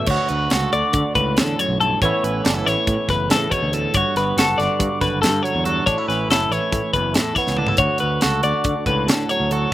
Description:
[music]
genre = math rock and midwest emo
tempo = 280 BPM (eighths)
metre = 9/8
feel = straight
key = unclear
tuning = A4 = 439 Hz
[part]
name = direct-recorded clean electric guitar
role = accompaniment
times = 0.0-9.7 s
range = D2 to F#4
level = -23 LUFS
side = right 5 dB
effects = spring reverb, slapback echo
[part]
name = twelve-string electric guitar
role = arpeggios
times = 0.0-9.7 s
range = A4 to D5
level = -21 LUFS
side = left 4 dB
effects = slapback echo
[part]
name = growling fingered electric bass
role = bass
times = 0.1-9.6 s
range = F#1 to D3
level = -24 LUFS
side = equal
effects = overdrive
[part]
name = crisp fusion drum kit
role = drums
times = 0.1-9.6 s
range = crash cymbal, hi-hat, kick drum, snare drum, toms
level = -22 LUFS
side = equal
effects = none
[sound]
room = little or no reverb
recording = recorded outdoors, with no room sound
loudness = -17 LUFS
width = side -14 dB against mid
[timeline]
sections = 0.1-9.7 A section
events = drum fill 7.5-7.8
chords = 0.1 Dmaj7; 2.0 Aadd9; 3.9 Gmaj7; 5.9 Aadd9; 7.8 Dmaj7

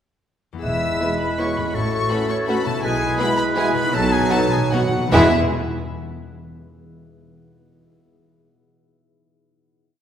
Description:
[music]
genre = classical, orchestral ballroom waltz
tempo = 144-177 BPM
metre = 3/4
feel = rubato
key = E major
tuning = A4 = 440 Hz
[part]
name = concert harp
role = arpeggios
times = 0.5-5.3 s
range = E2 to E5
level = -28 LUFS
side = left 4 dB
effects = none
[part]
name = warm symphonic violin section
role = melody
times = 0.6-5.3 s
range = E5 to E6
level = -26 LUFS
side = left 4 dB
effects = none
[part]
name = bright clarinet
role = second line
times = 0.6-5.3 s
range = D#4 to F#4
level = -27 LUFS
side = equal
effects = none
[part]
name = bright large flute ensemble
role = second line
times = 0.6-5.3 s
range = F#4 to E5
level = -27 LUFS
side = equal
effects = none
[part]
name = warm oboe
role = second line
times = 0.6-5.3 s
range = A4 to B4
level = -28 LUFS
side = right 3 dB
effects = none
[part]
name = mellow bassoon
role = accompaniment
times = 0.6-5.3 s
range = F#3 to A3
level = -28 LUFS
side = right 3 dB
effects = none
[part]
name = dark studio double bass section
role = bass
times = 0.6-5.3 s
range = E1 to B1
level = -29 LUFS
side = right 2 dB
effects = none
[part]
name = warm studio cello section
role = bass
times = 0.6-5.3 s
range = E2 to B2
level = -26 LUFS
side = right 1 dB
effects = none
[part]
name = timpani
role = percussion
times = 0.6-1.2, 3.9-5.3 s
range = E2 to B2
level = -28 LUFS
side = right 1 dB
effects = none
[part]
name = rich symphonic violin section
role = second line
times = 1.0-5.3 s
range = D#4 to B4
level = -29 LUFS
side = left 1 dB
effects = none
[part]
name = rich studio viola section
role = accompaniment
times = 1.0-5.3 s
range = E3 to C#4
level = -29 LUFS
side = right 1 dB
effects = none
[part]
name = mellow French horn section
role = sustained chords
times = 1.0-5.3 s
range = B3 to F#4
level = -28 LUFS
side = left 2 dB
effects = none
[part]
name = warm trombone section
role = sustained chords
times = 1.0-5.3 s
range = A2 to A3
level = -29 LUFS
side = right 2 dB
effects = none
[sound]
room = wet scoring stage reverb, RT60 1.8 s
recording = recorded in a church or concert hall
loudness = -17 LUFS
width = side -9 dB against mid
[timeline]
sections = 0.6-5.1 A section; 5.1-6.3 final chord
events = timpani fill 3.9-5.1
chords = 0.6 E; 1.7 F#m/A; 2.8 E/B; 3.9 B; 5.1 E

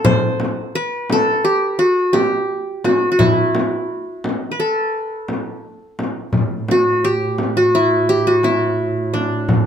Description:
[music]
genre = Turkish makam ensemble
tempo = 172 BPM (eighths)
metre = 9/8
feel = straight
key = A makam huseyni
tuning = A4 = 440 Hz
[part]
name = qanun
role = melody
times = 0.0-9.7 s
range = D4 to C5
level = -16 LUFS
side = equal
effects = none
[part]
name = frame drum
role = percussion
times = 0.0-9.7 s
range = none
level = -20 LUFS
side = left 1 dB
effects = none
[part]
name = clear double bass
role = drone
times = 6.3-9.7 s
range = A2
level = -25 LUFS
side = right 4 dB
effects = none
[sound]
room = light reverb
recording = close, detailed microphones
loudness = -15 LUFS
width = side -8 dB against mid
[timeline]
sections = 0.0-6.3 A section; 6.3-9.7 B section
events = none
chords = none

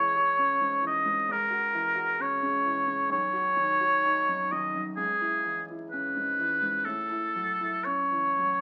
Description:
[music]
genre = classical, romantic duo for oboe and grand piano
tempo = 55-68 BPM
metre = 4/4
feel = rubato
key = unclear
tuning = A4 = 441 Hz
[part]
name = clear oboe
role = melody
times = 0.0-8.6 s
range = G#4 to D#5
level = -27 LUFS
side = equal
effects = none
[part]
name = warm concert grand piano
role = accompaniment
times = 0.0-8.6 s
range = B1 to G#4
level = -39 LUFS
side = equal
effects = none
[sound]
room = moderate large studio reverb, RT60 0.9 s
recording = very old 78 rpm record, vinyl crackle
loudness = -27 LUFS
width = mono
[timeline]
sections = 0.0-8.6 A section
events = none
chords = 0.0 C#m; 1.3 F#7/C#; 3.1 B; 5.0 C#m; 6.9 F#m7/A

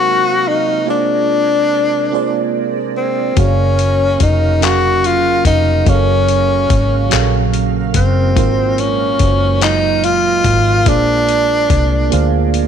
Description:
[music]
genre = slow six-eight R&B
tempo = 48 BPM (dotted quarters)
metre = 6/8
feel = straight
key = unclear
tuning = A4 = 440 Hz
[part]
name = breathy tenor saxophone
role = melody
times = 0.0-12.5 s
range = C4 to Gb4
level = -15 LUFS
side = left 2 dB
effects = none
[part]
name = FM electric piano with soft pad layer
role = accompaniment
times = 0.0-12.7 s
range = Gb3 to F5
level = -20 LUFS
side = right 13 dB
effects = chorus
[part]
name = tonewheel organ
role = sustained chords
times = 0.0-12.7 s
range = Bb2 to F5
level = -23 LUFS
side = right 12 dB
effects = chorus vibrato, slow rotary speaker
[part]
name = vintage muted fingered electric bass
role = bass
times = 3.4-12.7 s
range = F1 to D2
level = -16 LUFS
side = left 1 dB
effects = none
[part]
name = dusty soul sampler-style drum kit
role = drums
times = 3.4-12.7 s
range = handclaps, hi-hat, kick drum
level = -18 LUFS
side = left 3 dB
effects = none
[sound]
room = light reverb, digital ambience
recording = 1960s-style stereo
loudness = -11 LUFS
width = side -8 dB against mid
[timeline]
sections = 0.0-12.7 A section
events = drum fill 12.1-12.7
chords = 0.0 Ab13; 0.9 Bb9; 3.4 Gbmaj7; 8.4 Ab13; 10.9 Bb9

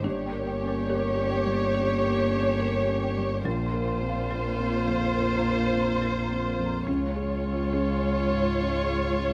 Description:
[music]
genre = neoclassical piano and strings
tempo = 70 BPM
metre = 4/4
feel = rubato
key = unclear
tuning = A4 = 439 Hz
[part]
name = muted chamber violin section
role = melody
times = 0.0-9.3 s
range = C5 to Db5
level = -32 LUFS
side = equal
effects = none
[part]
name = muted cello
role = second line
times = 0.0-9.3 s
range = Ab3 to Bb3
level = -35 LUFS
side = equal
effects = tape echo
[part]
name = felt-muted upright piano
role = accompaniment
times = 0.0-9.3 s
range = Bb1 to Bb4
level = -35 LUFS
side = equal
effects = none
[part]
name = muted viola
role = accompaniment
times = 0.0-9.3 s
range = F4 to G4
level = -36 LUFS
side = equal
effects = none
[part]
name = muted studio string section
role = sustained chords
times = 0.0-9.3 s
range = Ab3 to Db5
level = -39 LUFS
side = equal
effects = none
[part]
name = folk marimba with medium hard mallets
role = arpeggios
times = 0.0-9.3 s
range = Db4 to C6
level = -39 LUFS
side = equal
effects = none
[part]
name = muted double bass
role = bass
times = 0.0-9.3 s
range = G1 to Db2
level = -32 LUFS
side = equal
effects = none
[sound]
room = light reverb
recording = none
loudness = -26 LUFS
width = mono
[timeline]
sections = 0.0-9.3 A section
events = none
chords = 0.0 Gdim; 3.4 Bbsus2; 6.9 Db

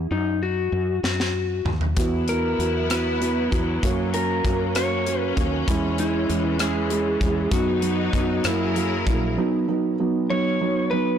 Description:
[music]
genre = six-eight pop ballad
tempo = 65 BPM (dotted quarters)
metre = 6/8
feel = straight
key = B major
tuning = A4 = 438 Hz
[part]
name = woody fretless electric bass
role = bass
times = 0.0-9.4 s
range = A#1 to F#2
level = -27 LUFS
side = equal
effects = none
[part]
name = clean lap steel guitar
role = melody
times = 0.1-11.2 s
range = D#4 to C#5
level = -26 LUFS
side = left 2 dB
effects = tape echo
[part]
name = modern studio drum kit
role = drums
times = 1.0-9.2 s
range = hi-hat, kick drum, rim click, snare drum, toms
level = -26 LUFS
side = equal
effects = soft clipping on snare
[part]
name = felt-muted upright piano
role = accompaniment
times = 2.0-11.2 s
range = F#3 to F#4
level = -24 LUFS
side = right 3 dB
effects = none
[part]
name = clear studio string section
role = sustained chords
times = 2.0-9.4 s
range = E3 to A#4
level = -30 LUFS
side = left 3 dB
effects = none
[sound]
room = light reverb, small room ambience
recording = blown-out, overdriven recording, overdrive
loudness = -20 LUFS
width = side -8 dB against mid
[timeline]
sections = 0.0-9.4 A section; 9.4-11.2 B section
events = drum fill 1.0-2.0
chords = 0.1 D#m/F#; 1.0 D#m; 2.0 Esus2; 3.8 F#; 5.7 C#m/E; 7.5 B/F#; 8.4 F#7; 9.4 B

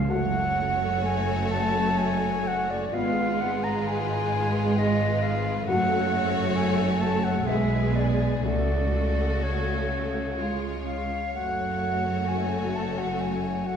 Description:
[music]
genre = classical, slow romantic movement for symphony orchestra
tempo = 64 BPM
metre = 3/4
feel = uneven beats, rubato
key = F# minor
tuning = A4 = 440 Hz
[part]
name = concert flute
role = second line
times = 0.0-13.8 s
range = C#5 to A#5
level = -28 LUFS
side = equal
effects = none
[part]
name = timpani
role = percussion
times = 0.0-0.1, 8.4-9.9 s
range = C#3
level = -32 LUFS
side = right 2 dB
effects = none
[part]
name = rich symphonic violin section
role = melody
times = 0.1-13.8 s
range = A4 to C#5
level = -37 LUFS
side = left 5 dB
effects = none
[part]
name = clear chamber violin section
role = second line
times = 0.1-13.8 s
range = F4 to G#4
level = -36 LUFS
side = left 1 dB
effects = none
[part]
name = rich studio viola section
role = accompaniment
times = 0.1-13.8 s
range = Ab3 to A3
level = -31 LUFS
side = right 1 dB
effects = none
[part]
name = warm French horn section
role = sustained chords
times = 0.1-13.8 s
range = G#3 to G#4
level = -32 LUFS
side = left 2 dB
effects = none
[part]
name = clear symphonic double bass section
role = bass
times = 0.1-13.8 s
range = F#1 to C#2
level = -30 LUFS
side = right 2 dB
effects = none
[part]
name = rich symphonic cello section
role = bass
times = 0.1-13.8 s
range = F#2 to C#3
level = -31 LUFS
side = equal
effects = none
[sound]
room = wet scoring stage reverb, RT60 1.9 s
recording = heard from further back in the room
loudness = -23 LUFS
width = side -7 dB against mid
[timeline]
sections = 0.1-13.8 A section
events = none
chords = 0.1 F#m; 2.9 Fdim/Ab; 5.7 F#m; 7.5 G#dim/B; 8.4 F#m/C#; 10.4 C#; 11.3 F#m

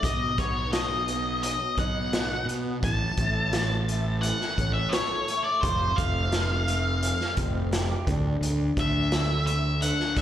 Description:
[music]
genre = quiet-loud alternative rock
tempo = 86 BPM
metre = 4/4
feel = straight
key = A major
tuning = A4 = 440 Hz
[part]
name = octave-fuzz lead guitar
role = melody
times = 0.0-10.2 s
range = C5 to A5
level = -28 LUFS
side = left 2 dB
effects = distortion, slapback echo
[part]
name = electric guitar through a small old amp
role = arpeggios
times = 0.0-10.2 s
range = A2 to A4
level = -33 LUFS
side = right 1 dB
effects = ensemble chorus, slapback echo
[part]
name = fuzz fingered electric bass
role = bass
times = 0.0-10.2 s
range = F1 to B2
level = -28 LUFS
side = equal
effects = overdrive
[part]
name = raw garage drum kit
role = drums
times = 0.0-10.2 s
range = hi-hat, kick drum, snare drum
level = -30 LUFS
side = equal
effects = none
[sound]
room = light reverb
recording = live gig heard through the venue's PA, recital hall reverb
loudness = -24 LUFS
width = side -11 dB against mid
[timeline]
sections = 0.0-10.2 A section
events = none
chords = 0.0 B; 2.8 A; 5.6 Fadd9; 8.1 D5

